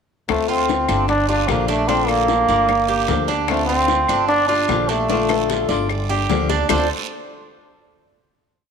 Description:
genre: latin, Cuban son and guajira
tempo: 150 BPM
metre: 4/4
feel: straight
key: D minor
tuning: A4 = 440 Hz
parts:
  - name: bright trombone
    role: melody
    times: 0.3-6.9 s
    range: A3 to D4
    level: -19 LUFS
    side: right 1 dB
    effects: none
  - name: flamenco guitar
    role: accompaniment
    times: 0.3-6.9 s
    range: D3 to G4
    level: -24 LUFS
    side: left 10 dB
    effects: none
  - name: upright bass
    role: bass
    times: 0.3-6.9 s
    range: G1 to D2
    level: -25 LUFS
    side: right 1 dB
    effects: none
  - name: bongos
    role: percussion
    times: 0.3-6.8 s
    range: none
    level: -28 LUFS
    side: left 11 dB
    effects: none
  - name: claves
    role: percussion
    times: 0.3-6.8 s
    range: none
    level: -31 LUFS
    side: left 12 dB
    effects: none
  - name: guiro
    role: percussion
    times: 0.3-6.8 s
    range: none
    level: -32 LUFS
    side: right 12 dB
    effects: none
  - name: Cuban tres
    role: arpeggios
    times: 0.5-6.9 s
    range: D4 to D5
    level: -24 LUFS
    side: right 9 dB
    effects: none
room: moderate echo chamber reverb, RT60 1.8 s, studio reverb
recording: 1960s-style stereo with parts hard left and right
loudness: -16 LUFS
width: side -6 dB against mid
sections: 0.3-6.7 montuno (vamp); 6.7-8.3 final chord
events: drum fill 5.1-6.7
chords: 0.3 Dm7; 1.1 Gm7; 1.9 Bbmaj7; 2.7 Gm7; 3.5 Dm7; 4.3 Gm7; 5.1 Bbmaj7; 5.9 Gm7; 6.7 D7(no3)

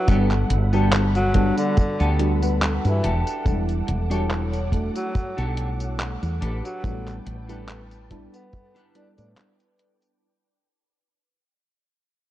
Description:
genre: vaporwave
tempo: 71 BPM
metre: 4/4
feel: swing 54% on 16ths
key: unclear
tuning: A4 = 440 Hz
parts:
  - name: breathy tenor saxophone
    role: melody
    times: 0.0-9.3 s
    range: D3 to D4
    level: -29 LUFS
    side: equal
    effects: tape echo
  - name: mellow FM electric piano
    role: accompaniment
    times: 0.0-10.2 s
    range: G3 to F#5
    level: -27 LUFS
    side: equal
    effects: analog chorus, analog delay
  - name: soft string machine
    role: sustained chords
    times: 0.0-10.2 s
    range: A4 to D6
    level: -37 LUFS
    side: equal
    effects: ensemble chorus
  - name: clean electric guitar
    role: riff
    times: 0.1-9.8 s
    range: B3 to B4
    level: -33 LUFS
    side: left 2 dB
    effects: lush chorus, analog delay
  - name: woody fretless electric bass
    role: bass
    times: 0.1-9.3 s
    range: E1 to A2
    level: -23 LUFS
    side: equal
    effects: none
  - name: detuned 8-bit digital drum machine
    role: drums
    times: 0.1-10.2 s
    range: handclaps, hi-hat, tambourine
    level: -29 LUFS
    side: equal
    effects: vintage 12-bit sampler grit
  - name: kick drum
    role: drums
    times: 0.1-8.7 s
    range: none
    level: -21 LUFS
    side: equal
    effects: vintage 12-bit sampler grit
room: light reverb, small room ambience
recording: dark, warm production, cassette tape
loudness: -20 LUFS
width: side -14 dB against mid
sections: 0.0-10.2 A section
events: fade-out 1.2-10.2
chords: 0.1 Gmaj9; 3.0 Em11; 6.4 A9sus4

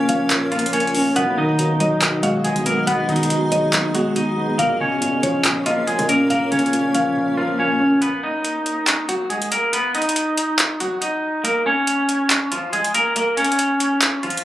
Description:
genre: hip hop, trap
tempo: 140 BPM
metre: 4/4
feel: half-time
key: unclear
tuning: A4 = 439 Hz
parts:
  - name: twangy electric guitar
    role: melody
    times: 0.0-14.4 s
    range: F3 to D#5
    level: -20 LUFS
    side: equal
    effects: spring reverb, low-pass filter
  - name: mallet-like synth pluck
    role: second line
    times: 0.0-8.0 s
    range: Db5 to F#5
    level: -24 LUFS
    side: left 1 dB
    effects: chorus, ping-pong delay
  - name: warbly lo-fi synth keys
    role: accompaniment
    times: 0.0-8.0 s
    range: Bb2 to Db4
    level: -21 LUFS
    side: equal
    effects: chorus, low-pass filter
  - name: granular cloud pad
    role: sustained chords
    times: 0.0-8.0 s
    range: Bb3 to F5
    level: -27 LUFS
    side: equal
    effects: built-in reverb
  - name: hard-hitting 808-style bass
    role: bass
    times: 0.0-7.1 s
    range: Bb1 to B2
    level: -31 LUFS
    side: right 1 dB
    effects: none
  - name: booming analog drum machine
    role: drums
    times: 0.1-14.4 s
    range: handclaps, hi-hat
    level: -21 LUFS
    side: equal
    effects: none
room: little or no reverb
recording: recorded on a phone in the room, club reverb, compression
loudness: -17 LUFS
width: side -14 dB against mid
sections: 0.0-8.0 A section; 8.0-14.4 B section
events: drums muted 7.2-8.0; kick muted 8.0-14.4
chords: 0.0 Bbm; 1.2 B6; 4.6 Bbm; 8.0 B; 11.4 Bbm

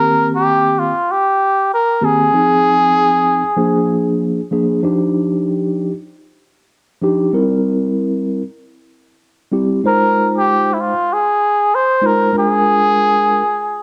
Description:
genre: hip hop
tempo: 96 BPM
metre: 4/4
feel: swing 58% on 16ths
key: C minor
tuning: A4 = 440 Hz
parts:
  - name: trumpet with cup mute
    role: melody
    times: 0.0-4.2, 9.9-13.8 s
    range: E4 to C5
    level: -16 LUFS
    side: equal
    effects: none
  - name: mellow tine electric piano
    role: accompaniment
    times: 0.0-13.4 s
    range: Eb3 to C5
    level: -19 LUFS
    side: equal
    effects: cassette tape
room: moderate spring reverb, RT60 1.6 s, studio reverb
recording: home recording on cassette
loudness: -15 LUFS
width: mono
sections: 0.0-13.8 A section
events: none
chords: 0.0 Cm7; 2.3 Fm7; 3.6 Bb7; 4.8 Ebmaj9; 7.3 C7; 9.8 Fm7; 12.3 Bb7

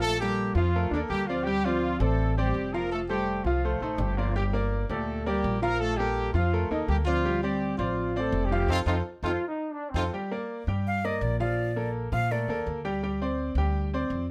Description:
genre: latin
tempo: 166 BPM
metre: 4/4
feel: straight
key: G minor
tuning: A4 = 440 Hz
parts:
  - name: warm horn section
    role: melody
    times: 0.0-10.0 s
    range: F3 to Eb5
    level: -31 LUFS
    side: equal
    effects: none
  - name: bright grand piano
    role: accompaniment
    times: 0.0-14.2 s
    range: Bb2 to G5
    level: -33 LUFS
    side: equal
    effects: none
  - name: upright bass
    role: bass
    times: 0.0-14.3 s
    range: F1 to Bb2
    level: -32 LUFS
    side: equal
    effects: none
  - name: warm trombone section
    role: second line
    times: 9.2-10.1 s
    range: C4 to F4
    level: -34 LUFS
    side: equal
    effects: none
  - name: breathy bright jazz flute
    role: melody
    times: 10.9-12.7 s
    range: D5 to F5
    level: -33 LUFS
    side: equal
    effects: none
room: light reverb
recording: close, detailed microphones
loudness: -28 LUFS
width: mono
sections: 0.0-10.1 A section; 10.1-14.3 B section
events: band accent 8.7-10.1; flute solo 10.1-14.3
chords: 0.0 Bbmaj7; 1.5 D7sus4; 2.9 F7; 4.4 Gm7; 5.8 Bbmaj7; 7.2 D7sus4; 8.7 F7; 10.1 Gm7; 11.6 Bbmaj7; 13.0 D7sus4

